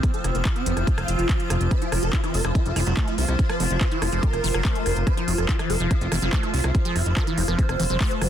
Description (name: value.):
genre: psychedelic trance.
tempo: 143 BPM.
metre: 4/4.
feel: straight.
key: F major.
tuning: A4 = 436 Hz.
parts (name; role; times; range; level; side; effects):
swarming rave lead; melody; 0.0-8.3 s; C4 to C5; -30 LUFS; right 1 dB; chorus, phaser, sidechain pumping, ping-pong delay.
overtone-sweeping drone; sustained chords; 0.0-8.3 s; F3 to F4; -32 LUFS; left 2 dB; chorus, built-in reverb, sidechain pumping.
electronic kick drum; drums; 0.0-8.1 s; none; -23 LUFS; equal; none.
techno drum kit; drums; 0.0-8.3 s; handclaps, hi-hat, rim click; -30 LUFS; right 1 dB; none.
granular cloud pad; texture; 0.0-8.3 s; F4 to F6; -33 LUFS; right 2 dB; built-in reverb, sidechain pumping.
fat analog bass; bass; 0.2-8.3 s; F1 to C2; -24 LUFS; equal; none.
liquid acid bass; riff; 1.8-8.3 s; E3 to F4; -30 LUFS; moving between left 7 dB and right 7 dB; phaser, auto-pan, sidechain pumping, digital delay.
room: digital ambience.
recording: dense, heavily limited modern master.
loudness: -20 LUFS.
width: side -10 dB against mid.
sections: 0.0-8.3 A section.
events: none.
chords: 0.0 F5.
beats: | 0.03 0.45 0.87 1.29 | 1.71 2.13 2.55 2.97 | 3.39 3.81 4.23 4.65 | 5.07 5.49 5.91 6.33 | 6.75 7.17 7.59 8.01.